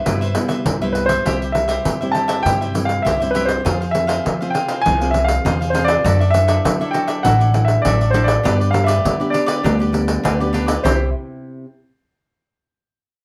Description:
samba and choro; 100 BPM; 4/4; straight; C major; A4 = 442 Hz
warm grand piano; melody; 0.0-11.1 s; B4 to A5; -22 LUFS; equal
cavaquinho; accompaniment; 0.0-11.1 s; D4 to F5; -29 LUFS; equal
nylon-string guitar; accompaniment; 0.0-11.6 s; G2 to A4; -27 LUFS; equal
upright bass; bass; 0.1-11.1 s; A1 to G3; -22 LUFS; equal
pandeiro; percussion; 0.1-11.0 s; -25 LUFS; equal
moderate small room reverb, RT60 0.5 s; -18 LUFS; mono
0.0-1.3 A section; 1.3-10.8 B section; 10.8-13.2 C section
0.0 Cmaj7; 1.3 C; 3.7 Fm; 6.1 Dadd9/F#; 8.4 G; 10.8 C

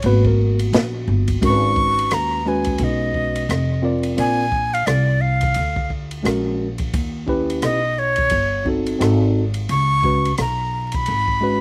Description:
hip hop, jazz-hop; 87 BPM; 4/4; swing 60% on 16ths; G# minor; A4 = 440 Hz
tine electric piano; accompaniment; 0.0-11.6 s; G#3 to D5; -24 LUFS; equal; overdrive
upright bass; bass; 0.0-11.6 s; F1 to D#2; -24 LUFS; equal
open jazz drum kit; drums; 0.0-11.4 s; hi-hat, kick drum, ride cymbal, rim click, snare drum; -27 LUFS; equal
breathy bright jazz flute; melody; 1.5-11.6 s; C#5 to C#6; -23 LUFS; equal; slapback echo
little or no reverb; recorded outdoors, with no room sound, vinyl crackle; -19 LUFS; mono
0.0-1.4 A section; 1.4-11.6 B section
tine electric piano solo 0.0-1.4
0.0 G#m9; 1.4 G#m7; 3.5 F5; 4.2 A#; 6.3 F#add9/A#; 6.9 D#7b9b13; 9.0 G#7b9; 9.7 C#5

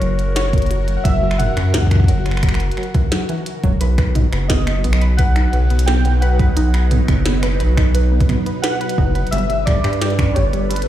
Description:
IDM; 87 BPM; 4/4; straight; A4 = 441 Hz
warbly lo-fi synth keys; melody; 0.0-10.9 s; B4 to G5; -24 LUFS; equal; chorus, tape echo
phased analog pad; sustained chords; 0.0-10.9 s; B2 to B4; -26 LUFS; equal; phaser, chorus
warbly dusty pluck; arpeggios; 0.0-10.8 s; E3 to B4; -25 LUFS; right 2 dB; chorus, tape echo
round analog bass; bass; 0.0-10.9 s; E1 to G2; -16 LUFS; equal
glitchy drum kit; drums; 0.0-10.9 s; finger snaps, hi-hat, snare drum, toms; -24 LUFS; equal
electronic kick drum; drums; 0.5-10.3 s; -17 LUFS; equal
digital ambience; played on a big sound system in a bare room, large studio reverb; -14 LUFS; side -12 dB against mid
0.0-10.9 A section
0.0 F#; 3.8 B; 9.3 G

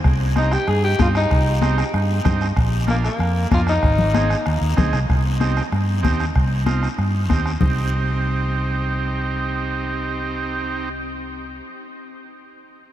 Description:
latin, cumbia; 190 BPM; 4/4; straight; C minor; A4 = 440 Hz
fingered electric bass; bass; 0.0-11.6 s; Ab1 to G2; -21 LUFS; equal
bombo; percussion; 0.0-7.7 s; -23 LUFS; equal
congas; percussion; 0.0-7.7 s; -27 LUFS; left 5 dB
guiro; percussion; 0.1-7.7 s; -38 LUFS; left 4 dB
raspy alto saxophone; melody; 0.4-4.7 s; Bb3 to Ab4; -24 LUFS; left 1 dB; diffuse ambient delay
combo organ; accompaniment; 0.4-10.9 s; Bb3 to Ab4; -26 LUFS; right 4 dB
moderate huge ambient reverb, RT60 7.2 s; dreamy mix soaked in reverb; -17 LUFS; side -12 dB against mid
0.0-5.1 A section; 5.1-7.6 B section; 7.6-10.1 C section
0.1 Cm; 2.6 Bb; 3.8 Ab; 5.1 Cm

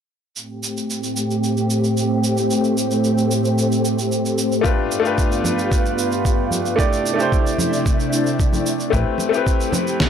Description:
sunset chillout; 112 BPM; 4/4; straight; A minor; A4 = 440 Hz
soft string machine; sustained chords; 0.5-10.1 s; G2 to G4; -20 LUFS; equal; ensemble chorus
electronic shaker and snare drum; drums; 0.4-10.1 s; -26 LUFS; right 2 dB
bright baby grand piano; accompaniment; 4.6-10.1 s; A3 to D5; -21 LUFS; moving between left 7 dB and right 5 dB; auto-pan, low-pass filter, tape echo
electronic kick drum; drums; 4.6-10.1 s; -19 LUFS; equal
congas; percussion; 5.4-9.8 s; -26 LUFS; right 2 dB
woody fretless electric bass; bass; 8.9-9.0 s; A1; -20 LUFS; equal; tube saturation
light reverb; dry, gritty hardware recording, transformer saturation; -17 LUFS; side -8 dB against mid
0.4-8.9 A section; 8.9-10.1 B section
filter sweep on string machine 0.4-8.9; filter sweep on grand piano 8.9-10.1
0.4 Am7; 4.6 G7; 6.8 C69; 8.9 Am7

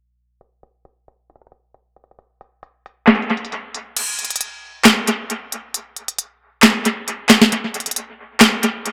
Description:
hip hop; 135 BPM; 4/4; half-time
trap drum kit; drums; 0.4-8.9 s; crash cymbal, handclaps, hi-hat, snare drum; -16 LUFS; equal; overdrive, dub echo
moderate spring reverb, RT60 1.4 s; echo-heavy mix, low-pass filter; -18 LUFS; mono
0.4-4.0 A section; 4.0-8.9 B section
filter sweep 0.4-4.0; kick muted 4.0-8.9

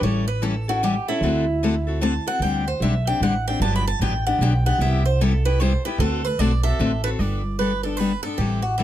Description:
acoustic string swing (jazz manouche); 151 BPM; 3/4; swing 63% on 8ths; G major; A4 = 440 Hz
picked swing-style acoustic guitar; melody; 0.0-8.8 s; E4 to B5; -25 LUFS; right 2 dB
picked steel-string acoustic guitar; accompaniment; 0.0-8.8 s; C3 to A4; -24 LUFS; left 4 dB
upright bass; bass; 0.0-8.8 s; G1 to D2; -22 LUFS; right 1 dB
little or no reverb; close, detailed microphones; -19 LUFS; side -12 dB against mid
0.0-7.2 A section; 7.2-8.8 B section
steel-string acoustic guitar solo 0.0-7.2
0.0 A7; 1.2 D7; 2.4 D7sus4; 3.6 Gmaj7; 4.8 Cmaj7; 6.0 D7; 7.2 Gadd9

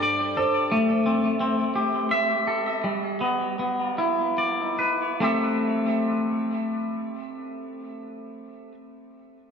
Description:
rock; 46-58 BPM (dotted quarters); 6/8; straight; A minor; A4 = 445 Hz
rich studio string section; sustained chords; 0.0-0.7 s; G2 to D5; -36 LUFS; left 1 dB
felt-muted upright piano; arpeggios; 0.0-0.7 s; C5 to D5; -30 LUFS; right 5 dB; digital delay
twangy electric guitar; arpeggios; 0.0-8.7 s; G3 to E5; -23 LUFS; left 1 dB; digital delay
moderate concert hall reverb, RT60 2.2 s; -22 LUFS; side -6 dB against mid
0.0-5.2 A section; 5.2-9.5 B section
slowing down 0.7-5.2
0.0 Gsus2; 0.7 Am7; 2.8 Em7/G; 5.2 Am7

